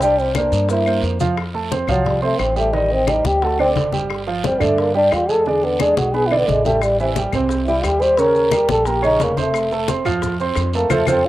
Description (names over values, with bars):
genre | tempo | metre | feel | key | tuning
Afro-Cuban jazz | 176 BPM | 4/4 | straight | F major | A4 = 442 Hz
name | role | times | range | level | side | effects
trombone with cup mute | melody | 0.0-11.3 s | C3 to C5 | -18 LUFS | left 1 dB | none
warm concert grand piano | accompaniment | 0.0-11.2 s | C3 to C6 | -21 LUFS | right 4 dB | cassette tape
upright bass | bass | 0.0-11.2 s | F1 to G2 | -24 LUFS | equal | none
bongos | percussion | 0.0-11.1 s | none | -33 LUFS | left 6 dB | none
congas | percussion | 0.0-11.2 s | none | -25 LUFS | left 4 dB | none
guiro | percussion | 0.0-11.2 s | none | -34 LUFS | right 6 dB | none
maracas | percussion | 0.0-1.4, 6.8-11.2 s | none | -38 LUFS | left 8 dB | none
claves | percussion | 0.4-11.1 s | none | -29 LUFS | left 8 dB | none
room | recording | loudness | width
moderate spring reverb, RT60 2.1 s | home recording on cassette | -15 LUFS | side -15 dB against mid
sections
0.0-1.4 A section; 1.4-11.3 B section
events
trombone solo 1.4-11.3; drum fill 5.5-6.8; band accent 10.9-11.3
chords
0.0 C7; 1.4 Fadd9; 2.7 Am7b5; 3.4 D5; 4.1 G5; 5.5 E7; 6.8 Am7; 8.2 Eb9; 9.5 F